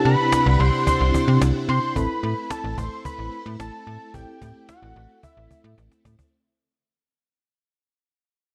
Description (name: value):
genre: synth-pop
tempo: 110 BPM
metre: 4/4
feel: straight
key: unclear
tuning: A4 = 441 Hz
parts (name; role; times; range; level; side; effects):
- fat analog lead; melody; 0.0-5.7 s; E5 to C6; -28 LUFS; equal; chorus, slapback echo
- FM electric piano with tremolo; accompaniment; 0.0-6.3 s; C4 to A4; -31 LUFS; equal; phaser
- string machine, violins; sustained chords; 0.0-6.3 s; C3 to F#5; -30 LUFS; equal; ensemble chorus
- slap-like FM bass; bass; 0.1-6.2 s; A1 to C3; -23 LUFS; equal; none
- cajon; drums; 0.1-6.3 s; none; -30 LUFS; equal; none
room: moderate plate reverb, RT60 1.9 s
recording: dark, warm production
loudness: -21 LUFS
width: mono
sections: 0.0-6.3 A section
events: fade-out 0.0-6.3; drum fill 5.8-6.3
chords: 0.0 Cadd9; 2.0 Am